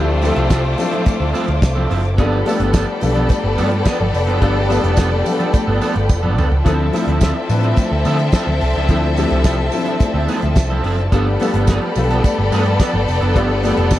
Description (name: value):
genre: disco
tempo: 107 BPM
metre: 4/4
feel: straight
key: D dorian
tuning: A4 = 441 Hz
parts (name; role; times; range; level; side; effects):
- dark studio violin section; second line; 0.0-14.0 s; A3 to E5; -22 LUFS; left 2 dB; none
- electric guitar at the edge of break-up; accompaniment; 0.0-14.0 s; F3 to A4; -24 LUFS; right 5 dB; spring reverb
- warm baby grand piano; accompaniment; 0.0-14.0 s; F3 to B4; -24 LUFS; left 4 dB; none
- dark studio string section; sustained chords; 0.0-14.0 s; F3 to D6; -26 LUFS; left 1 dB; none
- picked electric bass; bass; 0.0-14.0 s; F1 to D3; -18 LUFS; equal; none
- damped 70s drum kit; drums; 0.2-14.0 s; hi-hat, kick drum, snare drum, toms; -15 LUFS; equal; none
- congas; percussion; 0.2-14.0 s; none; -27 LUFS; left 2 dB; none
- tambourine; percussion; 0.2-14.0 s; none; -36 LUFS; right 15 dB; none
room: small room reverb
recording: dry, close 1970s-style studio recording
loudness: -14 LUFS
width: side -14 dB against mid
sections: 0.0-14.0 A section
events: drum fill 6.1-6.7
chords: 0.0 Dm9; 2.2 G9; 6.7 Dm9; 11.1 G9